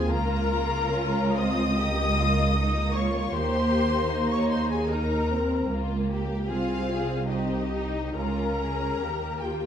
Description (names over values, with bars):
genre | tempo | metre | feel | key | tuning
classical, slow romantic movement for string orchestra | 66-78 BPM | 4/4 | rubato | unclear | A4 = 440 Hz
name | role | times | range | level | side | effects
warm symphonic violin section | melody | 0.0-9.7 s | Eb5 to Eb6 | -32 LUFS | left 4 dB | none
rich symphonic violin section | second line | 0.0-9.7 s | Bb3 to Ab4 | -30 LUFS | left 3 dB | none
rich symphonic viola section | accompaniment | 0.0-9.7 s | Eb4 to Eb5 | -30 LUFS | left 2 dB | none
rich symphonic cello section | bass | 0.0-9.7 s | C2 to Eb2 | -30 LUFS | right 3 dB | none
rich symphonic double bass section | bass | 0.0-9.7 s | C2 to Eb2 | -30 LUFS | right 2 dB | none
room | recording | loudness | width
wet recital hall reverb, RT60 1.4 s | dark, warm production | -23 LUFS | side -8 dB against mid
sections
0.0-9.7 A section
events
none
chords
0.1 Bbm/Db; 6.5 Ab/C; 8.2 Db6; 9.0 Eb